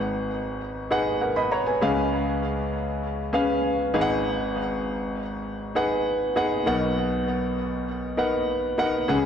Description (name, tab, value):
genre	pop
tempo	99 BPM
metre	4/4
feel	straight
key	G# dorian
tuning	A4 = 440 Hz
part	clear grand piano	solo	0.0-9.3 s	G#1 to B5	-23 LUFS	equal	digital delay
room	wet scoring stage reverb, RT60 1.9 s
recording	none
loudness	-23 LUFS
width	side -8 dB against mid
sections	0.0-9.1 A section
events	none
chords	0.0 G#m7; 1.8 C#7; 3.9 G#m7; 6.7 Bmaj7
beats	0.00 0.61 1.22 | 1.82 2.43 3.03 3.64 | 4.25 4.85 5.46 6.06 | 6.67 7.28 7.88 8.49 | 9.09